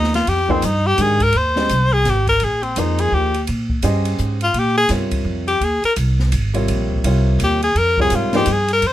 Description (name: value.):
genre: modal jazz.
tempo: 168 BPM.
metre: 3/4.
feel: swing 63% on 8ths.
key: Bb dorian.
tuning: A4 = 436 Hz.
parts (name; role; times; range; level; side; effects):
bright tenor saxophone; melody; 0.0-8.9 s; C4 to C5; -17 LUFS; left 2 dB; none.
warm grand piano; accompaniment; 0.0-8.5 s; C3 to Eb5; -22 LUFS; equal; none.
upright bass; bass; 0.0-8.9 s; Ab1 to Bb2; -19 LUFS; right 1 dB; none.
open jazz drum kit; drums; 0.0-8.9 s; hi-hat, kick drum, ride cymbal, snare drum; -27 LUFS; equal; none.
room: little or no reverb.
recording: close, detailed microphones, faint mains hum.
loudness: -15 LUFS.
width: side -13 dB against mid.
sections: 0.0-1.3 A section; 1.3-8.9 A section.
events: tenor saxophone solo 0.0-8.9.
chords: 0.0 Fm9; 1.3 Bb13sus4.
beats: | 0.26 0.62 0.98 | 1.33 1.69 2.05 | 2.41 2.76 3.12 | 3.48 3.83 4.19 | 4.55 4.90 5.26 | 5.62 5.97 6.33 | 6.68 7.04 7.40 | 7.75 8.11 8.47 | 8.82.